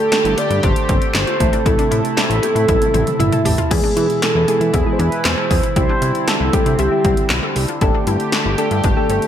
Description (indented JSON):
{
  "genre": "synth-pop",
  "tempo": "117 BPM",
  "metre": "4/4",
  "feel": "straight",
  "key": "unclear",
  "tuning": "A4 = 440 Hz",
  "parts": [
    { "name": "mellow horn-like synth lead", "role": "melody", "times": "0.0-7.5 s", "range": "E4 to D5", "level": "-20 LUFS", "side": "right 1 dB", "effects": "chorus, shimmer reverb" },
    { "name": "chorused pulse-width pad", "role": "sustained chords", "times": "0.0-9.3 s", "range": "B2 to G4", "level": "-23 LUFS", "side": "equal", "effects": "shimmer reverb" },
    { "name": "analog pluck", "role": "arpeggios", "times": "0.0-9.3 s", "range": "C4 to A4", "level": "-27 LUFS", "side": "left 4 dB", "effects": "chorus, ping-pong delay, shimmer reverb" },
    { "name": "soft electric-piano-like synth keys", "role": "accompaniment", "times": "0.1-9.3 s", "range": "B2 to A5", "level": "-23 LUFS", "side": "right 1 dB", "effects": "chorus, shimmer reverb" },
    { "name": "punchy analog drum machine", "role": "drums", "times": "0.1-9.3 s", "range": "crash cymbal, handclaps, hi-hat, kick drum, snare drum, toms", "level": "-19 LUFS", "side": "equal", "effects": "gated reverb" },
    { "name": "fat analog bass", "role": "bass", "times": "0.2-9.2 s", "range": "G1 to E3", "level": "-20 LUFS", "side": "equal", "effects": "none" }
  ],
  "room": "light reverb",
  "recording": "none",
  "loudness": "-14 LUFS",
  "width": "side -10 dB against mid",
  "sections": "0.0-3.7 A section; 3.7-9.3 B section",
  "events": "drum fill 2.7-3.7; synth keys fill 2.9-3.7",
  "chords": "0.0 Gsus2; 3.7 E; 5.8 Cadd9; 7.8 Gsus2"
}